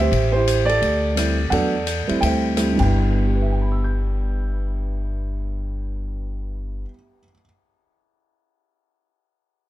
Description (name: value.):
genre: jazz piano trio.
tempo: 172 BPM.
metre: 4/4.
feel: swing 63% on 8ths.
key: G major.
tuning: A4 = 440 Hz.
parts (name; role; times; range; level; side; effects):
dark upright piano; melody; 0.0-7.5 s; G2 to G6; -22 LUFS; right 2 dB; none.
upright bass; bass; 0.0-6.8 s; G1 to E2; -22 LUFS; left 1 dB; none.
open jazz drum kit; drums; 0.0-2.8 s; crash cymbal, hi-hat, kick drum, ride cymbal, rim click; -28 LUFS; left 5 dB; none.
room: little or no reverb.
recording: close, detailed microphones.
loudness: -19 LUFS.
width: side -14 dB against mid.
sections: 0.0-2.9 A section; 2.9-5.7 B section.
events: none.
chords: 0.1 Am7; 0.8 D9sus4; 1.5 E7sus4; 2.2 D9sus4; 2.7 G6.